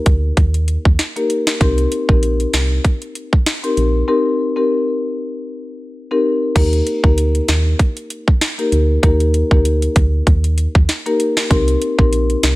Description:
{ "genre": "dancehall", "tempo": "97 BPM", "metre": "4/4", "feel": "swing 56% on 16ths", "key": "Eb major", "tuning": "A4 = 440 Hz", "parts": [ { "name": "woody FM bass", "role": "bass", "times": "0.1-12.6 s", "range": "Bb1 to Eb2", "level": "-16 LUFS", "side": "equal", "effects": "none" }, { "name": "island pop drum kit", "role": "drums", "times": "0.1-12.6 s", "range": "crash cymbal, hi-hat, kick drum, snare drum", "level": "-15 LUFS", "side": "equal", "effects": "overdrive" }, { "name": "marimba with medium mallets", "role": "accompaniment", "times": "1.2-12.2 s", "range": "Bb3 to Bb4", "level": "-18 LUFS", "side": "left 2 dB", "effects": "sidechain pumping" } ], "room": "little or no reverb", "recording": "none", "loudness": "-14 LUFS", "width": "side -19 dB against mid", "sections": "0.0-6.6 A section; 6.6-12.6 B section", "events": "break 4.1-6.6", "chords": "0.0 Eb5; 1.6 Cm7; 6.6 Eb; 11.5 Cm7" }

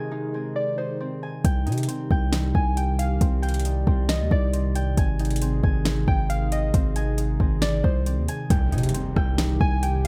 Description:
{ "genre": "hip hop, atmospheric cloud-rap", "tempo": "136 BPM", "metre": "4/4", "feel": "half-time", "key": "C minor", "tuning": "A4 = 440 Hz", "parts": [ { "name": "warbly tape-like pad", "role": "sustained chords", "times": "0.0-10.1 s", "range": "C3 to D5", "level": "-33 LUFS", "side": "equal", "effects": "chorus, built-in reverb, sidechain pumping" }, { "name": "concert harp", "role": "arpeggios", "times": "0.0-10.1 s", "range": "C4 to Ab5", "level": "-37 LUFS", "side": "equal", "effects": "delay" }, { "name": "warbly dusty pluck", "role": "melody", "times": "0.6-10.1 s", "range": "C5 to Ab5", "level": "-33 LUFS", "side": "equal", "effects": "chorus, delay" }, { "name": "long sustained 808-style bass", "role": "bass", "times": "1.4-10.1 s", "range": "Ab1 to C3", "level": "-26 LUFS", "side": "equal", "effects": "none" }, { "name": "smooth R&B drum kit", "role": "drums", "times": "1.4-10.1 s", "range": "hi-hat, kick drum, rim click, snare drum", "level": "-26 LUFS", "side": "equal", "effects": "none" }, { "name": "impact", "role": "sound effects", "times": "8.5-10.1 s", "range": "none", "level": "-34 LUFS", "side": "equal", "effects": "none" } ], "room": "little or no reverb", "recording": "none", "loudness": "-23 LUFS", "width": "mono", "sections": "0.0-8.5 A section; 8.5-10.1 B section", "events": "impact 8.5-10.1", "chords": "0.0 Ab; 1.4 Cm; 5.0 Ab; 8.5 Cm" }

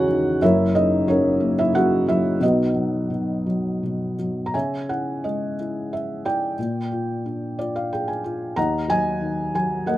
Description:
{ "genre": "classical, lyrical solo piano", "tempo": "82-93 BPM", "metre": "3/4", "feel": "rubato", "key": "C# dorian", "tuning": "A4 = 441 Hz", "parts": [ { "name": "felt-muted upright piano", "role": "solo", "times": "0.0-10.0 s", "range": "E1 to A#5", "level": "-20 LUFS", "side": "equal", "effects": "none" } ], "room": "moderate studio reverb, RT60 0.5 s", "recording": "none", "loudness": "-20 LUFS", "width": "side -14 dB against mid", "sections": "0.0-4.5 A section; 4.5-10.0 B section", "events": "felt piano fill 7.2-8.6", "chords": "0.4 F#; 2.4 B; 4.5 C#m; 6.6 A#7; 8.6 D#m" }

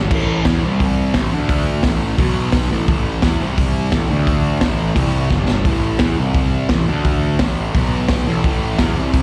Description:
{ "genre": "garage rock duo or trio", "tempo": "173 BPM", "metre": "4/4", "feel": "straight", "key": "A minor", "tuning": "A4 = 440 Hz", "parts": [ { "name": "thick fuzz guitar", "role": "riff", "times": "0.0-9.2 s", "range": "G2 to E4", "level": "-23 LUFS", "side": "equal", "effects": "distortion, slapback echo" }, { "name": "fuzz picked electric bass", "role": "bass", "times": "0.0-9.2 s", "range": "G1 to E2", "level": "-23 LUFS", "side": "equal", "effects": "overdrive" }, { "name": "crunchy breakbeat drum kit", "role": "drums", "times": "0.1-9.2 s", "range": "crash cymbal, hi-hat, kick drum, snare drum", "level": "-21 LUFS", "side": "equal", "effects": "none" } ], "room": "studio ambience", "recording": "live gig heard through the venue's PA, club reverb", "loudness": "-17 LUFS", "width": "mono", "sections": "0.1-9.2 A section", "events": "drum fill 5.3-5.7", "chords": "0.1 A5; 0.6 C5; 1.1 A5; 1.3 D5; 1.8 A5; 2.2 B5; 2.7 A5; 3.4 C5; 3.9 A5; 4.1 D5; 4.6 A5; 5.0 C5; 5.3 G5; 5.7 A5; 6.2 C5; 6.7 A5; 6.9 D5; 7.4 A5; 7.7 B5; 8.3 A5" }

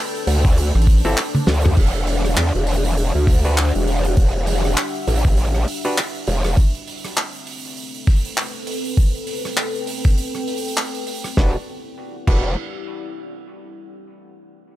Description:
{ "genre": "glitch hop", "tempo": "100 BPM", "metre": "4/4", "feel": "swing 59% on 16ths", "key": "E minor", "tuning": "A4 = 438 Hz", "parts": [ { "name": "deep dark ambient pad", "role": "texture", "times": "0.0-13.7 s", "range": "C4 to G5", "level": "-29 LUFS", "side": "left 2 dB", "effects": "chorus, built-in reverb, sidechain pumping" }, { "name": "damped 70s drum kit", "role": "drums", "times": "0.2-12.4 s", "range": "crash cymbal, handclaps, hi-hat, rim click, snare drum, toms", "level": "-24 LUFS", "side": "right 1 dB", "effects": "none" }, { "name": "growl bass", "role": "bass", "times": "0.3-6.6, 11.4-12.6 s", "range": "E1 to E2", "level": "-18 LUFS", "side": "equal", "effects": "chorus, tube saturation" }, { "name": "electronic kick drum", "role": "drums", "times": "0.4-12.4 s", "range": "none", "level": "-15 LUFS", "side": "equal", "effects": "none" }, { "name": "rubbery square bass", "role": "bass", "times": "0.7-1.0 s", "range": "A1", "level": "-14 LUFS", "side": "equal", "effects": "none" }, { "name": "overdriven clav", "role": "stabs", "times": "1.0-6.0, 11.4-12.5 s", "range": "C4 to B4", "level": "-27 LUFS", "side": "equal", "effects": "sidechain pumping, tape echo" } ], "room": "small room reverb", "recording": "none", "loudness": "-17 LUFS", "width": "side -14 dB against mid", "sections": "0.0-1.8 A section; 1.8-11.4 B section; 11.4-13.8 C section", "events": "drop 0.0-1.8; kick drops out 1.2-1.8; drum fill 1.3-1.8", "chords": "0.0 D7sus4; 1.8 Em9; 6.6 Am9; 11.4 Em9" }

